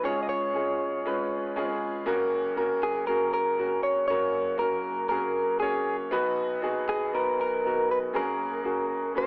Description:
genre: pop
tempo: 118 BPM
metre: 4/4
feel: straight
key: F# major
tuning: A4 = 442 Hz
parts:
  - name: direct-recorded clean electric guitar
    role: melody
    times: 0.0-9.3 s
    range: G#4 to D#5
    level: -27 LUFS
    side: equal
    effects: analog chorus, cassette tape
  - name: clear concert grand piano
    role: accompaniment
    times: 0.0-9.3 s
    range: F#1 to C#5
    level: -28 LUFS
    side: equal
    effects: none
room: moderate studio reverb, RT60 0.6 s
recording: home recording on cassette, AM radio sound, faint mains hum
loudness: -25 LUFS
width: side -29 dB against mid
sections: 0.0-9.3 A section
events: none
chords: 0.0 C#; 2.1 F#; 6.1 B; 8.1 F#add9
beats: | 0.04 0.55 1.05 1.56 | 2.07 2.57 3.08 3.59 | 4.09 4.60 5.11 5.61 | 6.12 6.63 7.13 7.64 | 8.14 8.65 9.16

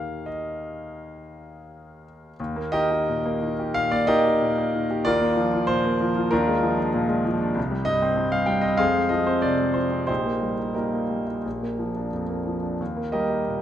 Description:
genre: classical, romantic character piece for solo piano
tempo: 84-98 BPM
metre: 4/4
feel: rubato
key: Eb major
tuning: A4 = 440 Hz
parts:
  - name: warm concert grand piano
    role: solo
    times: 0.0-13.6 s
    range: Bb1 to G5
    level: -22 LUFS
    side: equal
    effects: none
room: moderate recital hall reverb, RT60 1.5 s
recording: none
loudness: -21 LUFS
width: side -10 dB against mid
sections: 0.0-2.4 A section; 2.4-13.6 A section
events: none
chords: 0.0 Eb; 5.1 Bb/Eb; 6.3 Bb7/Eb; 7.6 C5; 8.8 Fm; 10.1 Eb/Bb; 11.5 Bb; 12.8 Eb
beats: 0.28 1.00 1.70 | 2.39 3.07 3.75 4.42 | 5.06 5.69 6.31 6.94 | 7.57 8.18 8.80 9.43 | 10.09 10.77 11.45 12.13 | 12.80 13.48

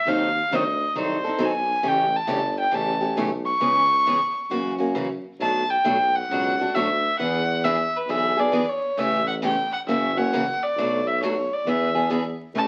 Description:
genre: acoustic string swing (jazz manouche)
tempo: 134 BPM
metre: 4/4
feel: swing 65% on 8ths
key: A mixolydian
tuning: A4 = 440 Hz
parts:
  - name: warm violin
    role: melody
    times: 0.0-12.7 s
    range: B4 to C#6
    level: -25 LUFS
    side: equal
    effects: none
  - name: picked steel-string acoustic guitar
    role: accompaniment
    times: 0.1-12.7 s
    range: B2 to A4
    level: -28 LUFS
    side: equal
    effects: none
  - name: warm tuba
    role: bass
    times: 0.1-12.7 s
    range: F#1 to F#2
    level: -32 LUFS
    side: equal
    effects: none
room: moderate studio reverb, RT60 0.7 s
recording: very old 78 rpm record, vinyl crackle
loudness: -23 LUFS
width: mono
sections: 0.0-12.6 A section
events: none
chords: 0.1 D#dim7; 1.8 A7; 3.6 C#m7; 4.5 F#7; 5.4 Bm7; 7.2 E7; 9.0 A7; 9.9 F#7; 10.8 Bm7; 11.7 E7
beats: | 0.05 0.50 0.94 1.39 | 1.83 2.28 2.73 3.17 | 3.62 4.06 4.51 4.96 | 5.40 5.85 6.30 6.74 | 7.19 7.64 8.09 8.53 | 8.98 9.43 9.87 10.32 | 10.77 11.21 11.66 12.11 | 12.55

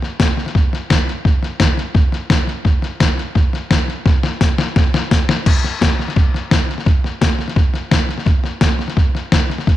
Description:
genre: rock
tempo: 171 BPM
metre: 4/4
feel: straight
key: none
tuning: none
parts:
  - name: trip hop sampler-style drum kit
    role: drums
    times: 0.0-9.8 s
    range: crash cymbal, hi-hat, kick drum, snare drum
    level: -14 LUFS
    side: equal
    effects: none
room: light reverb, digital ambience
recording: 1960s-style stereo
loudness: -14 LUFS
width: side -14 dB against mid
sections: 0.0-5.5 A section; 5.5-9.8 B section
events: drum fill 4.1-5.5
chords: none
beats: 0.19 0.55 0.90 | 1.25 1.60 1.95 2.30 | 2.65 3.00 3.36 3.71 | 4.06 4.41 4.76 5.11 | 5.46 5.81 6.16 6.51 | 6.86 7.21 7.57 7.92 | 8.27 8.62 8.97 9.32 | 9.67

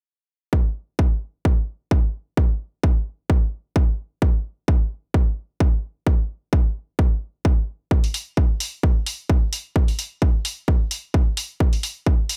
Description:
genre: bass house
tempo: 130 BPM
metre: 4/4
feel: swing 55% on 16ths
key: none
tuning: none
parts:
  - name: electronic kick drum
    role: drums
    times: 0.5-12.2 s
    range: none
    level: -20 LUFS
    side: equal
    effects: none
  - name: electronic hi-hat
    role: drums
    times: 8.0-12.4 s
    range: none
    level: -29 LUFS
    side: equal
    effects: none
room: little or no reverb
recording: none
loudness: -22 LUFS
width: mono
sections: 0.5-12.4 A section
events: none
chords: none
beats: | 0.53 0.99 1.45 1.91 | 2.37 2.83 3.30 3.76 | 4.22 4.68 5.14 5.60 | 6.07 6.53 6.99 7.45 | 7.91 8.37 8.84 9.30 | 9.76 10.22 10.68 11.14 | 11.60 12.07

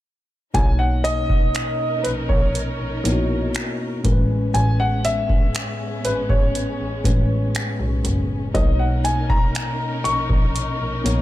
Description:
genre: contemporary R&B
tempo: 60 BPM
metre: 4/4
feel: straight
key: B major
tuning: A4 = 442 Hz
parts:
  - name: warm concert grand piano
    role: melody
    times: 0.5-11.2 s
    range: B4 to C#6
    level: -25 LUFS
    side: equal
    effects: ping-pong delay
  - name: bell-like tine electric piano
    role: accompaniment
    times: 0.5-11.2 s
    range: A2 to C#5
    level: -25 LUFS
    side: left 1 dB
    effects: none
  - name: warm studio string section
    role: sustained chords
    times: 0.5-11.2 s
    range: G#3 to A#4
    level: -31 LUFS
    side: equal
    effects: none
  - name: clear double bass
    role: bass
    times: 0.5-11.2 s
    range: F#1 to B1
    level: -23 LUFS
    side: equal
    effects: none
  - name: booming analog drum machine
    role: drums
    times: 0.5-11.2 s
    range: finger snaps, hi-hat, kick drum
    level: -21 LUFS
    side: equal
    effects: none
room: studio reverb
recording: none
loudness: -18 LUFS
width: side -14 dB against mid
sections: 0.5-11.2 A section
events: none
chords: 0.5 Bmaj9; 4.0 Amaj9; 8.5 Bmaj9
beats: | 0.55 1.55 2.55 3.55 | 4.55 5.55 6.55 7.55 | 8.55 9.55 10.55

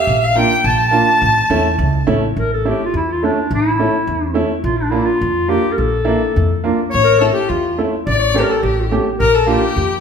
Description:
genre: klezmer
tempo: 105 BPM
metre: 2/4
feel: straight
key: A phrygian dominant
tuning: A4 = 437 Hz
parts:
  - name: warm clarinet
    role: melody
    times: 0.0-10.0 s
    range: D4 to A5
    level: -17 LUFS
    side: equal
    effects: none
  - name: clear violin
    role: second line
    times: 0.0-2.1, 6.9-10.0 s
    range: F4 to A5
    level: -19 LUFS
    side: left 5 dB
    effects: none
  - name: upright bass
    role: bass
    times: 0.1-10.0 s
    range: A1 to F2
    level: -20 LUFS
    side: equal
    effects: none
  - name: clear upright piano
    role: accompaniment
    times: 0.4-9.6 s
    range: A3 to G4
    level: -19 LUFS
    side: right 2 dB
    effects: none
room: wet large studio reverb, RT60 1.3 s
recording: band playing live in one room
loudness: -13 LUFS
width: side -6 dB against mid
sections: 0.0-2.4 A section; 2.4-10.0 B section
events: clarinet solo 0.0-2.4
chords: 0.1 Bb; 1.2 A; 4.7 Bb; 6.9 A; 9.2 Bb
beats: | 0.07 0.65 | 1.22 1.79 | 2.37 2.94 | 3.51 4.08 | 4.65 5.22 | 5.79 6.36 | 6.93 7.50 | 8.07 8.63 | 9.20 9.76

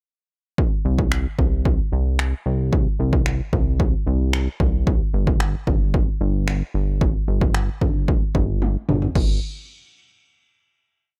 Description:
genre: dance-pop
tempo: 112 BPM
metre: 4/4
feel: straight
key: unclear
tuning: A4 = 440 Hz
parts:
  - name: punchy analog drum machine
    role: drums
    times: 0.6-9.3 s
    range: crash cymbal, finger snaps, kick drum, toms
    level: -23 LUFS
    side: equal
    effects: none
  - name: chorused synth bass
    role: bass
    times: 0.9-9.4 s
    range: G1 to C2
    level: -24 LUFS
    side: equal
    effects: sidechain pumping
room: little or no reverb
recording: none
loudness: -21 LUFS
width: mono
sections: 0.6-9.2 verse; 9.2-11.2 final note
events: drum fill 8.6-9.2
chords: none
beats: | 0.58 1.12 1.65 2.19 | 2.73 3.26 3.80 4.33 | 4.87 5.40 5.94 6.48 | 7.01 7.55 8.08 8.62 | 9.15

